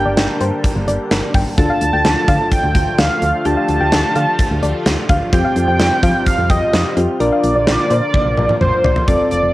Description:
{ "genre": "synth-pop", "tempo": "128 BPM", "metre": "4/4", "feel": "straight", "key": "Bb major", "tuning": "A4 = 440 Hz", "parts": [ { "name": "octave-doubled lead", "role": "melody", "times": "0.0-9.5 s", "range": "C5 to A5", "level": "-18 LUFS", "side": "right 1 dB", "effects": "chorus, analog delay, shimmer reverb" }, { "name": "soft electric-piano-like synth keys", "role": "accompaniment", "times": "0.0-9.5 s", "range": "C4 to Bb4", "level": "-22 LUFS", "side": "left 2 dB", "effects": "chorus, cassette tape, shimmer reverb" }, { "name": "sweeping resonant pad", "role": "sustained chords", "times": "0.0-9.1 s", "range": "C3 to A5", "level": "-25 LUFS", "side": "right 1 dB", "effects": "chorus, cassette tape, shimmer reverb" }, { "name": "solid FM bass", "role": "bass", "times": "0.0-9.5 s", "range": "F1 to F3", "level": "-19 LUFS", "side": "equal", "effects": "none" }, { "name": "soft round pluck", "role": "second line", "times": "0.1-8.9 s", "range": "C5 to G5", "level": "-24 LUFS", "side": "left 1 dB", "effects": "chorus, cassette tape, analog delay, shimmer reverb" }, { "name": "gated 80s drum kit", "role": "drums", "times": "0.2-9.4 s", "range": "hi-hat, kick drum, snare drum, toms", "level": "-17 LUFS", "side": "equal", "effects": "cassette tape" } ], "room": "moderate studio reverb, RT60 0.5 s", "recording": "home recording on cassette", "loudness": "-13 LUFS", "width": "side -17 dB against mid", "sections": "0.0-9.1 A section", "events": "drum fill 8.1-9.1", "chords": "0.0 Gm; 1.6 Dm; 5.3 Fsus2; 7.2 Bb" }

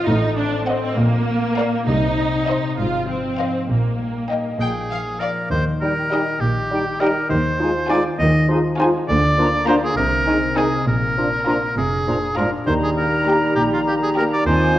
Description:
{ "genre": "cinematic, playful, whimsical film cue", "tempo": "67 BPM (dotted quarters)", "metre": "6/8", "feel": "straight", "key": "Eb major", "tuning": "A4 = 441 Hz", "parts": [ { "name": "clear studio viola section", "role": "accompaniment", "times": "0.0-14.4 s", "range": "Bb3 to F4", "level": "-24 LUFS", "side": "right 1 dB", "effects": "none" }, { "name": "concert harp", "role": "arpeggios", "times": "0.0-14.8 s", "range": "Ab2 to Eb5", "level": "-27 LUFS", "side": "left 4 dB", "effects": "none" }, { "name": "rich studio cello section", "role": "bass", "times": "0.1-14.8 s", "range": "Ab2 to Eb3", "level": "-24 LUFS", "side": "right 1 dB", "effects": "none" }, { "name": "rich studio double bass section", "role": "bass", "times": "0.1-14.8 s", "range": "F1 to Eb2", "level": "-25 LUFS", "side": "right 1 dB", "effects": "none" }, { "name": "clear studio violin section", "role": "melody", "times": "0.7-14.4 s", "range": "Eb5 to Bb5", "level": "-30 LUFS", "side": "left 1 dB", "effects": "none" }, { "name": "rich studio violin section", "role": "second line", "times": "0.7-14.4 s", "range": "Eb4 to G5", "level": "-28 LUFS", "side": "left 1 dB", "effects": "none" }, { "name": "bright oboe", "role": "second line", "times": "4.6-14.8 s", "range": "F4 to Eb5", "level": "-22 LUFS", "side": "right 1 dB", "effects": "none" }, { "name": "bright flute section", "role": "second line", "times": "5.8-14.8 s", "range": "G5 to Bb5", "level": "-28 LUFS", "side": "left 1 dB", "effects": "none" }, { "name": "mellow clarinet", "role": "second line", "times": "5.8-14.8 s", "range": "C4 to Eb4", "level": "-26 LUFS", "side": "equal", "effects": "none" }, { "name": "warm bassoon", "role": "accompaniment", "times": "5.8-14.8 s", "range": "Eb3 to G3", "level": "-26 LUFS", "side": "right 1 dB", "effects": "none" }, { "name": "clear French horn section", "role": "sustained chords", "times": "5.8-14.8 s", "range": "G3 to G4", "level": "-26 LUFS", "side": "left 1 dB", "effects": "none" } ], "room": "wet scoring stage reverb, RT60 1.5 s", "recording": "worn, warbling old tape, cassette tape, warbly pitch drift", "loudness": "-17 LUFS", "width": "side -14 dB against mid", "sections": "0.0-5.5 A section; 5.5-14.8 B section", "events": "none", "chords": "0.1 Adim7; 1.0 Bb; 1.9 Cm; 2.8 Fm7/Ab; 3.7 Eb/Bb; 4.6 Bb; 5.5 Eb; 7.3 Fm7/Eb; 9.1 Bb/D; 10.0 Ab/C; 10.9 Bb; 12.7 Eb" }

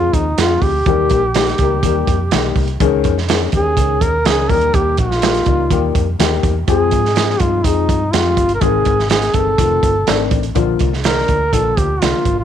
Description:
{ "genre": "uptempo 1960s-style soul", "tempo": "124 BPM", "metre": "4/4", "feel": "straight", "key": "unclear", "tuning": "A4 = 440 Hz", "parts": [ { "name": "mellow duduk", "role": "melody", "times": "0.0-12.4 s", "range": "Eb4 to Bb4", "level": "-17 LUFS", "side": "right 1 dB", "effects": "none" }, { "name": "dark upright piano", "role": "accompaniment", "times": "0.0-12.3 s", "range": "D3 to Bb4", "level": "-19 LUFS", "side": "left 13 dB", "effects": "none" }, { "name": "vintage muted fingered electric bass", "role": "bass", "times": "0.0-12.4 s", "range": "F1 to Ab2", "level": "-20 LUFS", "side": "equal", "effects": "none" }, { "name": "crunchy breakbeat drum kit", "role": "drums", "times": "0.1-12.4 s", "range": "hi-hat, kick drum, snare drum", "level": "-18 LUFS", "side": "right 3 dB", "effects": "none" } ], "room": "light reverb, small room ambience", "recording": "1960s-style stereo", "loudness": "-13 LUFS", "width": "side -9 dB against mid", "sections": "0.0-10.6 A section; 10.6-12.4 B section", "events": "none", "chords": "0.0 Fm; 0.9 Eb; 2.8 Dbsus2; 4.5 Eb; 6.7 Fm; 8.6 Ab; 9.6 F7; 10.6 Bb" }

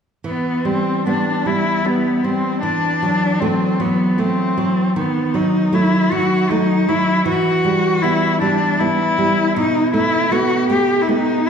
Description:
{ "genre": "romantic duo for cello and classical guitar", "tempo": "78 BPM", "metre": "3/4", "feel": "rubato", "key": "E minor", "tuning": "A4 = 440 Hz", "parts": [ { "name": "nylon-string guitar", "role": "accompaniment", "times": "0.2-11.5 s", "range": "B2 to B3", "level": "-18 LUFS", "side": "right 1 dB", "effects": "none" }, { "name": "rich cello", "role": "melody", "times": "0.3-11.5 s", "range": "B3 to G4", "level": "-18 LUFS", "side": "left 2 dB", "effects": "tape echo" } ], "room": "wet recital hall reverb, RT60 1.6 s", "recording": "heard from further back in the room", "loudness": "-15 LUFS", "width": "side -7 dB against mid", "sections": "0.2-11.5 A section", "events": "none", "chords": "0.2 Em; 2.6 F#m7b5/E; 5.0 D#dim; 7.3 Em; 9.6 B7" }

